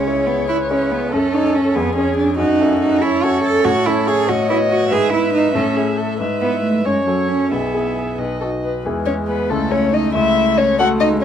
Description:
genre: quick classical-period movement for piano quartet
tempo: 94 BPM (dotted quarters)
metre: 6/8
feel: rubato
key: E major from 3.7 s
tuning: A4 = 440 Hz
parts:
  - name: dark violin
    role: melody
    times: 0.0-11.2 s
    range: F#4 to F#5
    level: -21 LUFS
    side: left 5 dB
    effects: none
  - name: warm cello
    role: second line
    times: 0.0-11.2 s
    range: F#3 to A4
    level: -19 LUFS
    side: right 4 dB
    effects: none
  - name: bright concert grand piano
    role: accompaniment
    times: 0.0-11.2 s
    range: B1 to E5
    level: -20 LUFS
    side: left 2 dB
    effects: none
  - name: warm viola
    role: accompaniment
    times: 0.0-11.2 s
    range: G#3 to E5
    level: -24 LUFS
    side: right 2 dB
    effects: none
room: light reverb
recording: dark, warm production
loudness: -15 LUFS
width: side -9 dB against mid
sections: 0.0-8.9 A section; 8.9-11.2 B section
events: none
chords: 0.0 C#m; 1.1 F#m; 1.8 C#/E#; 2.4 F#m7; 3.7 A; 4.3 B7/A; 4.9 E/G#; 5.6 A5; 6.2 E/G#; 6.8 F#m; 7.5 E/B; 8.2 B; 8.9 E; 9.5 A/C#; 10.1 F#m7/C#

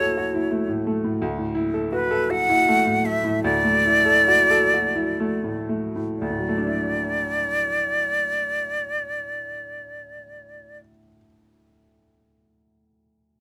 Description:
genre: classical, impressionist duo for flute and grand piano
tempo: 57-88 BPM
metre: 3/4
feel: rubato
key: D major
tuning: A4 = 437 Hz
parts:
  - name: bright silver concert flute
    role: melody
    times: 0.0-10.8 s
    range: B4 to F#5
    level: -23 LUFS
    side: equal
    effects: none
  - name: clear baby grand piano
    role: accompaniment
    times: 0.0-13.4 s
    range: D2 to A4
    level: -26 LUFS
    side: equal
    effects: none
room: light reverb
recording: close, detailed microphones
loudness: -22 LUFS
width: mono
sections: 0.0-6.2 A section; 6.2-12.3 B section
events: slowing down 0.2-6.2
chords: 0.0 Dadd9

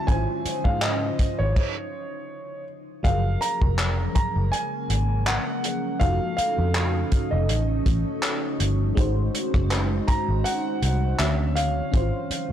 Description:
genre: contemporary R&B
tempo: 81 BPM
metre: 4/4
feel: swing 54% on 16ths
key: unclear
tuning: A4 = 440 Hz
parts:
  - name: warm concert grand piano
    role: melody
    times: 0.0-12.5 s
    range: Db5 to Bb5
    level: -29 LUFS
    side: right 1 dB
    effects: tape echo
  - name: FM electric piano with soft pad layer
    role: accompaniment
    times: 0.0-12.5 s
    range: D3 to E5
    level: -30 LUFS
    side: left 1 dB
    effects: chorus, phaser
  - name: glassy FM pad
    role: sustained chords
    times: 0.0-12.5 s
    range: Db3 to C5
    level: -32 LUFS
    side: equal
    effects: ensemble chorus, built-in reverb
  - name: vintage muted fingered electric bass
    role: bass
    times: 0.1-12.3 s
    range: F1 to Ab2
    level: -24 LUFS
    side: equal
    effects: none
  - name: warm soul drum kit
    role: drums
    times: 0.1-12.5 s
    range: crash cymbal, handclaps, hi-hat, kick drum, rim click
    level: -25 LUFS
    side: equal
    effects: none
room: little or no reverb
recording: blown-out, overdriven recording, overdrive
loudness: -21 LUFS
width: side -10 dB against mid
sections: 0.0-3.0 A section; 3.0-12.5 B section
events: stop 1.6-3.0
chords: 0.1 Dbmaj9/Ab; 3.0 Gbmaj9; 6.0 F7b9; 9.0 Ab7; 11.2 Dmaj9; 11.9 Dbmaj9/Ab

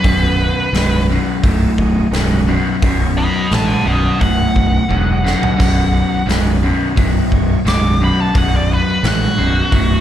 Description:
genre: blues rock power trio and southern rock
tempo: 87 BPM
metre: 4/4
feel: straight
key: B mixolydian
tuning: A4 = 440 Hz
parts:
  - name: bluesy overdriven lead guitar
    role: melody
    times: 0.0-10.0 s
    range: F#4 to D6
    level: -20 LUFS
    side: right 1 dB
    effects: wah, distortion
  - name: overdriven electric guitar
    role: riff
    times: 0.0-10.0 s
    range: B1 to A2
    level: -17 LUFS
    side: equal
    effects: slapback echo
  - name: growling fingered electric bass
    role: bass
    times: 0.0-9.9 s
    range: B0 to A1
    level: -17 LUFS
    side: equal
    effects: overdrive
  - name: big rock drum kit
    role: drums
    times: 0.0-9.9 s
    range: hi-hat, kick drum, snare drum, splash cymbal, toms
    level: -20 LUFS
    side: equal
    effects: none
  - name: overdriven tonewheel organ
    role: sustained chords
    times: 0.1-10.0 s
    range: D#4 to C#5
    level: -29 LUFS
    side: right 4 dB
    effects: slow rotary speaker
room: light reverb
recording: live gig heard through the venue's PA, recital hall reverb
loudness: -12 LUFS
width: side -11 dB against mid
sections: 0.0-10.0 A section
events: lead electric guitar solo 0.0-10.0; drum fill 4.9-5.6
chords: 0.0 B

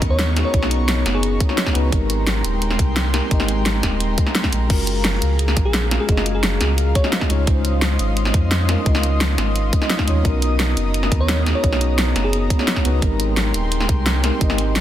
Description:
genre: liquid drum and bass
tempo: 173 BPM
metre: 4/4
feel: straight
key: unclear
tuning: A4 = 440 Hz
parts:
  - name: mellow tine electric piano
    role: accompaniment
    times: 0.0-14.8 s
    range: G#3 to D#5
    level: -25 LUFS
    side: left 1 dB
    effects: medium stereo tremolo, dub echo
  - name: airy breathy pad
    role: sustained chords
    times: 0.0-14.8 s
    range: G#3 to D#6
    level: -28 LUFS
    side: equal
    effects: chorus, sidechain pumping
  - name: sub bass with octave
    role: bass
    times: 0.0-14.8 s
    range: D#1 to E#2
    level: -20 LUFS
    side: equal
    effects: none
  - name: electronic kick drum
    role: drums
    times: 0.0-14.5 s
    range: none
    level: -19 LUFS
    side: equal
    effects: none
  - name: pop drum kit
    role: drums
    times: 0.0-14.8 s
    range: crash cymbal, hi-hat, snare drum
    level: -22 LUFS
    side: equal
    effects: none
  - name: bell-like FM electric piano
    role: melody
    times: 0.1-1.4, 5.7-7.2, 11.2-12.5 s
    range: G#4 to C#5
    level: -28 LUFS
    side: equal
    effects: chorus, cassette tape, digital delay
room: light reverb, digital ambience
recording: dense, heavily limited modern master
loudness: -16 LUFS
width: side -12 dB against mid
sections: 0.0-14.8 A section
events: none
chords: 0.0 Bmaj9; 1.9 G#maj9; 4.7 F#maj9; 7.3 C#maj9; 10.2 Bmaj9; 13.0 G#maj9

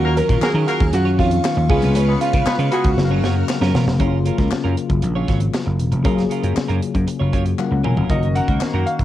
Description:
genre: polished 1980s jazz-funk pop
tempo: 117 BPM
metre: 4/4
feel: straight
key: F# major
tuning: A4 = 440 Hz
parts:
  - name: clear grand piano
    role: melody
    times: 0.0-3.4, 8.1-8.9 s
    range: C#4 to F#5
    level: -22 LUFS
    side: right 1 dB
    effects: none
  - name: dark horn section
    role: second line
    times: 0.0-2.9, 8.1-9.0 s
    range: A#3 to B4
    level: -26 LUFS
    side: left 1 dB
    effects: cassette tape
  - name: tine electric piano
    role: accompaniment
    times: 0.0-9.0 s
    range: C#3 to G#5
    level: -23 LUFS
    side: left 7 dB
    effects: analog chorus, cassette tape
  - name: string machine, violins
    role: sustained chords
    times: 0.0-4.0 s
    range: F#3 to E#6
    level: -31 LUFS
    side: right 1 dB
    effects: ensemble chorus, cassette tape
  - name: clean electric guitar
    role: riff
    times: 0.0-9.0 s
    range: F#3 to C#5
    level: -28 LUFS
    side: right 9 dB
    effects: analog chorus, cassette tape
  - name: vintage slap bass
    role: bass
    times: 0.0-9.0 s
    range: E1 to D#3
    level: -19 LUFS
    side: equal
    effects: none
  - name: tight funk drum kit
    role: drums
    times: 0.2-9.0 s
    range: crash cymbal, hi-hat, kick drum, snare drum, toms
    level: -22 LUFS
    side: equal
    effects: none
  - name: group handclap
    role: percussion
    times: 0.4-8.7 s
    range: none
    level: -33 LUFS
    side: left 10 dB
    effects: none
room: small room ambience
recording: home recording on cassette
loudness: -16 LUFS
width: side -13 dB against mid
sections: 0.0-4.0 A section; 4.0-8.1 B section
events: drum fill 3.0-4.0, 7.6-8.1; tine electric piano fill 7.3-8.1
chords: 0.0 D#m9; 1.7 C#7; 3.0 F#maj7; 8.1 F#6

